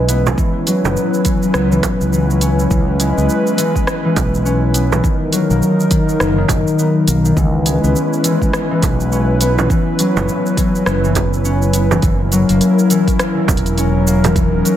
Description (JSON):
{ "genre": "organic downtempo", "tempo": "103 BPM", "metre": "4/4", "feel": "swing 60% on 16ths", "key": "F# mixolydian", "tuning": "A4 = 441 Hz", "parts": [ { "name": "airy breathy pad", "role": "sustained chords", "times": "0.0-14.8 s", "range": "F#3 to B4", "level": "-19 LUFS", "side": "right 1 dB", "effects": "chorus, sidechain pumping" }, { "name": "concert harp", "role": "arpeggios", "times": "0.0-14.8 s", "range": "D#3 to C#4", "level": "-17 LUFS", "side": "left 3 dB", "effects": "vintage 12-bit sampler grit, ping-pong delay" }, { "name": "fretless electric bass", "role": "bass", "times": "0.0-14.6 s", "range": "E1 to C#2", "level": "-17 LUFS", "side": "right 1 dB", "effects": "tube saturation, sidechain pumping" }, { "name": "deep house drum kit", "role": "drums", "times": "0.1-14.8 s", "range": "hi-hat, rim click, shaker", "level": "-22 LUFS", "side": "equal", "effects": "none" }, { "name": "frame drum", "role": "percussion", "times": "0.3-14.3 s", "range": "none", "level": "-22 LUFS", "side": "right 6 dB", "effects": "none" }, { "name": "electronic kick drum", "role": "drums", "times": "0.4-14.5 s", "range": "none", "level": "-18 LUFS", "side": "right 1 dB", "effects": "none" } ], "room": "moderate recital hall reverb, RT60 1.5 s, digital ambience", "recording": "none", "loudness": "-12 LUFS", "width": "side -11 dB against mid", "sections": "0.0-12.0 A section; 12.0-14.8 B section", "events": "none", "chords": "0.4 F#7sus4; 2.7 C#m7; 5.0 Bmaj7; 7.4 C#m7; 9.7 F#7sus4; 12.0 F#7", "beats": "| 0.38 0.96 1.54 2.13 | 2.71 3.29 3.87 4.46 | 5.04 5.62 6.20 6.79 | 7.37 7.95 8.53 9.12 | 9.70 10.28 10.86 11.45 | 12.03 12.61 13.19 13.78 | 14.36" }